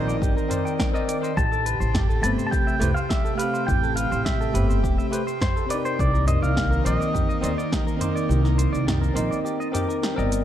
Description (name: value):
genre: sunset chillout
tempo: 104 BPM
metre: 4/4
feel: straight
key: unclear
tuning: A4 = 440 Hz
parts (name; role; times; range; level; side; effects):
- pedal steel guitar; melody; 0.0-10.0 s; C5 to A5; -29 LUFS; equal; digital delay
- bell-like tine electric piano; accompaniment; 0.0-10.4 s; A3 to D6; -28 LUFS; moving between left 4 dB and right 6 dB; auto-pan, tape echo
- airy breathy pad; sustained chords; 0.0-10.4 s; C3 to G4; -30 LUFS; equal; chorus
- clean electric guitar; arpeggios; 0.0-10.4 s; G4 to G5; -33 LUFS; right 2 dB; tape echo
- upright bass; bass; 0.0-10.4 s; E1 to Eb2; -23 LUFS; equal; none
- deep house drum kit; drums; 0.1-10.4 s; cabasa, hi-hat, snare drum, toms; -30 LUFS; equal; none
- electronic kick drum; drums; 0.2-7.8 s; none; -26 LUFS; equal; none
room: light reverb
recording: dark, warm production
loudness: -20 LUFS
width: side -11 dB against mid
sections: 0.0-10.4 A section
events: kick drops out 8.3-10.4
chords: 0.0 Cm9; 1.4 Am9; 6.0 Cm9